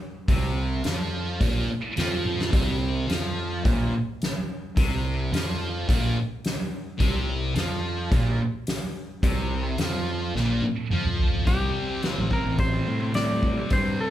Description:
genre	psychedelic rock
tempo	107 BPM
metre	4/4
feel	straight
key	unclear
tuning	A4 = 440 Hz
part	thick fuzz guitar	riff	0.3-14.1 s	Bb2 to C4	-28 LUFS	equal	distortion, phaser
part	fuzz fingered electric bass	bass	0.3-14.0 s	A1 to A2	-28 LUFS	equal	overdrive
part	soft-mallet drum kit	drums	0.3-13.8 s	hi-hat, kick drum, snare drum, toms	-27 LUFS	equal	none
part	clean lap steel guitar	melody	11.5-14.1 s	G4 to D5	-29 LUFS	left 1 dB	none
room	moderate large studio reverb, RT60 0.8 s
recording	band playing live in one room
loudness	-23 LUFS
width	side -12 dB against mid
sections	0.0-11.5 A section; 11.5-14.1 B section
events	drum fill 2.2, 10.4-11.5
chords	0.0 Bbsus2; 11.5 C5

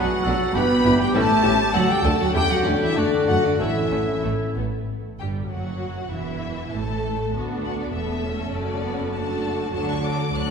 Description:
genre	quick classical-period movement for symphony orchestra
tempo	92-103 BPM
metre	2/4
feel	rubato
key	D major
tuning	A4 = 439 Hz
part	warm studio violin section	melody	0.0-10.5 s	D5 to F#6	-28 LUFS	left 3 dB	none
part	clear oboe	second line	0.0-4.6 s	E4 to B4	-30 LUFS	right 3 dB	none
part	mellow clarinet	second line	0.0-4.2 s	D4 to B4	-26 LUFS	equal	none
part	mellow large flute ensemble	second line	0.0-4.2 s	D5 to B5	-29 LUFS	left 2 dB	none
part	rich studio violin section	second line	0.0-10.5 s	A3 to A4	-31 LUFS	left 2 dB	none
part	warm studio viola section	accompaniment	0.0-10.5 s	E3 to D4	-30 LUFS	right 2 dB	none
part	warm studio cello section	bass	0.0-10.5 s	D2 to B3	-27 LUFS	right 1 dB	none
part	warm studio double bass section	bass	0.0-10.5 s	E1 to F#2	-28 LUFS	right 2 dB	none
part	mellow French horn section	sustained chords	0.3-4.6 s	C#4 to A4	-26 LUFS	left 4 dB	none
room	wet concert hall reverb, RT60 2.4 s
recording	heard from further back in the room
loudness	-20 LUFS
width	side -6 dB against mid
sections	0.0-4.9 A section; 4.9-10.5 B section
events	none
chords	0.0 Bm; 0.6 Em7; 1.1 A7; 1.7 D; 2.3 A7; 3.0 D; 3.6 A; 4.9 N.C.; 6.1 A5/E; 7.4 D; 8.5 D/F#; 9.7 D

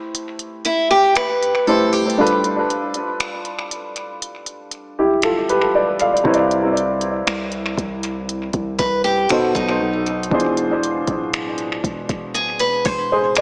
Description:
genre	contemporary R&B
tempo	59 BPM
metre	4/4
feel	straight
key	C major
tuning	A4 = 440 Hz
part	warm baby grand piano	accompaniment	0.0-13.4 s	B2 to F5	-22 LUFS	equal	tape echo
part	smooth R&B drum kit	drums	0.1-13.4 s	finger snaps, hi-hat, kick drum	-27 LUFS	equal	tape echo
part	picked steel-string acoustic guitar	arpeggios	0.7-2.4, 8.8-13.4 s	D#4 to C5	-20 LUFS	equal	tape echo
part	long sustained 808-style bass	bass	6.2-13.4 s	D1 to C2	-31 LUFS	equal	none
room	moderate echo chamber reverb, RT60 2.2 s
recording	echo-heavy mix, small speaker sound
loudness	-19 LUFS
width	mono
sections	0.0-13.4 A section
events	break 0.0-6.2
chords	0.0 Am7; 2.2 G7; 6.2 Cmaj9; 9.3 B7b9; 10.3 E7b9b13

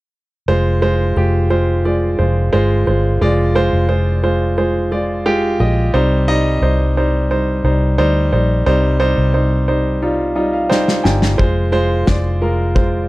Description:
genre	piano-driven pop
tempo	88 BPM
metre	4/4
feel	straight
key	unclear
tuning	A4 = 440 Hz
part	clear baby grand piano	accompaniment	0.5-13.1 s	C3 to Ab5	-16 LUFS	right 1 dB	none
part	vintage muted fingered electric bass	bass	0.5-13.1 s	F1 to D2	-16 LUFS	equal	none
part	loose indie drum kit	drums	10.7-12.9 s	kick drum, snare drum	-16 LUFS	left 1 dB	none
room	little or no reverb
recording	none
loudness	-13 LUFS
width	side -19 dB against mid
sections	0.5-13.1 A section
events	grand piano fill 10.0-11.4; drum fill 10.7-11.4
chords	0.5 Fm; 5.9 Cm; 11.4 Fm

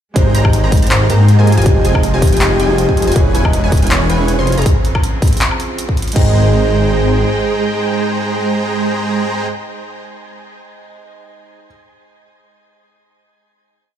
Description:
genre	future bass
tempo	160 BPM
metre	4/4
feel	swing 55% on 16ths, half-time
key	Ab major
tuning	A4 = 440 Hz
part	felt-muted upright piano	accompaniment	0.1-11.7 s	E3 to G5	-24 LUFS	right 6 dB	sidechain pumping, digital delay
part	soft octave-layered synth lead	melody	0.2-9.5 s	G4 to Eb5	-22 LUFS	equal	chorus, sidechain pumping, ping-pong delay
part	rich chamber string section	sustained chords	0.2-9.5 s	Db3 to G5	-26 LUFS	right 1 dB	sidechain pumping
part	wide unison pluck	arpeggios	0.2-9.5 s	Ab5 to C6	-28 LUFS	equal	sidechain pumping
part	dense compressed supersaw	riff	0.2-9.5 s	Ab3 to C6	-20 LUFS	right 2 dB	sidechain pumping, digital delay
part	wide detuned saw bass	bass	0.2-7.2 s	E1 to Ab2	-13 LUFS	left 1 dB	chorus, sidechain pumping
part	big-room dance drum kit	drums	0.2-6.2 s	crash cymbal, handclaps, hi-hat, woodblock	-21 LUFS	left 1 dB	none
part	electronic kick drum	drums	0.2-6.2 s	none	-13 LUFS	equal	none
room	little or no reverb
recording	played on a big sound system in a bare room, large studio reverb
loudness	-11 LUFS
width	side -10 dB against mid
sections	0.2-6.2 drop; 6.2-9.2 final chord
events	drop 0.2-6.2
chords	0.2 Abmaj7; 1.5 Fm7; 3.2 E6; 4.5 Dbmaj7/F; 6.2 Abmaj7

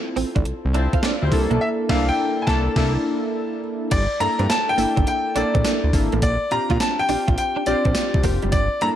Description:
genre	R&B, new jack swing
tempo	104 BPM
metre	4/4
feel	swing 66% on 16ths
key	G dorian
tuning	A4 = 439 Hz
part	warm analog keys	accompaniment	0.0-9.0 s	Bb3 to A5	-25 LUFS	left 1 dB	chorus
part	direct-recorded clean electric guitar	riff	0.2-8.8 s	G3 to F4	-29 LUFS	right 6 dB	ensemble chorus
part	fat analog bass	bass	0.2-8.9 s	F1 to Bb2	-23 LUFS	equal	none
part	gated 80s digital drum machine	drums	0.2-9.0 s	crash cymbal, hi-hat, kick drum, snare drum, tambourine	-23 LUFS	equal	gated reverb, gated reverb snare, overdrive
part	mellow horn section	stabs	0.7-2.9 s	A3 to C5	-31 LUFS	left 4 dB	tape echo
part	bright concert grand piano	melody	1.6-8.9 s	D5 to Bb5	-23 LUFS	left 1 dB	tape echo
room	little or no reverb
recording	none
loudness	-18 LUFS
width	side -11 dB against mid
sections	0.0-3.9 A section; 3.9-9.0 B section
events	band accent 1.6-3.9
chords	0.0 Dm9; 1.3 C13; 3.9 Gm69; 6.2 Bb6

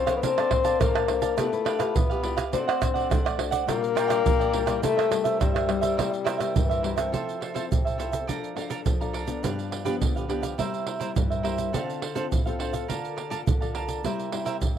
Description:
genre	samba and choro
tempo	104 BPM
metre	4/4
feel	straight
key	unclear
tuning	A4 = 441 Hz
part	breathy tenor saxophone	second line	0.0-7.1 s	E3 to C4	-26 LUFS	left 8 dB	none
part	cavaquinho	accompaniment	0.0-14.6 s	D4 to Bb5	-30 LUFS	right 7 dB	none
part	nylon-string guitar	accompaniment	0.0-14.8 s	G2 to C5	-32 LUFS	left 8 dB	none
part	egg shaker, pandeiro, tamborim and surdo	percussion	0.1-14.8 s	none	-27 LUFS	right 3 dB	none
room	moderate spring reverb, RT60 1.9 s, small room reverb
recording	home recording on cassette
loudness	-23 LUFS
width	side -9 dB against mid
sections	0.0-7.1 A section; 7.1-14.8 B section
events	none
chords	0.2 Bbmaj9; 1.4 G13; 2.5 D7/A; 3.7 Gm7/Bb; 4.8 C7; 7.1 Fmaj7; 8.3 Bbmaj7/F; 9.4 G7; 10.6 C7; 11.7 Dm7; 12.9 Bbmaj7/D; 14.0 C7

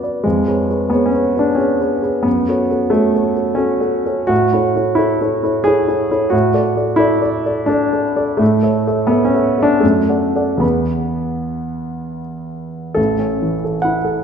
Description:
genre	classical, romantic character piece for solo piano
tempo	66-93 BPM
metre	3/4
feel	rubato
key	F# minor, A major from 4.3 s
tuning	A4 = 435 Hz
part	warm concert grand piano	solo	0.0-14.2 s	A1 to B5	-14 LUFS	equal	none
room	moderate scoring stage reverb, RT60 1.7 s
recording	minimal, uncompressed stereo recording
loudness	-14 LUFS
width	side -7 dB against mid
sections	0.0-13.0 A section; 13.0-14.2 B section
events	none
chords	0.2 C#7/E#; 2.3 F#m; 4.3 A; 6.3 D/A; 8.4 A; 9.8 D/F#; 10.6 E; 13.0 A

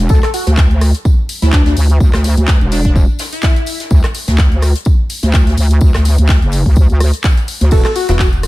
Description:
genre	bass house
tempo	126 BPM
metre	4/4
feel	swing 55% on 16ths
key	unclear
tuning	A4 = 438 Hz
part	wobble bass	bass	0.0-7.8 s	E1 to D2	-11 LUFS	equal	chorus, overdrive, sidechain pumping
part	plucky unison lead	melody	0.1-4.0, 7.7-8.3 s	D4 to A4	-20 LUFS	left 1 dB	wide subtle chorus, ping-pong delay
part	electronic kick drum	drums	0.1-8.3 s	none	-11 LUFS	equal	studio reverb
part	soft brush drum kit	drums	0.1-8.5 s	hi-hat, snare drum, tambourine	-29 LUFS	left 2 dB	high-pass filter on hats, studio reverb, high-pass filter on snare, high-pass filter on perc, high-pass filter on room
part	house drum kit	drums	0.2-8.5 s	crash cymbal, handclaps, hi-hat, rim click	-21 LUFS	equal	studio reverb
part	clear concert grand piano	stabs	7.7-8.1 s	B3 to F#4	-22 LUFS	left 4 dB	sidechain pumping
part	metallic FM bass	bass	8.1-8.5 s	E1	-15 LUFS	equal	overdrive, sidechain pumping
room	small room ambience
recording	none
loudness	-10 LUFS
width	side -18 dB against mid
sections	0.0-8.5 A section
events	none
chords	0.1 N.C.; 7.7 Esus2

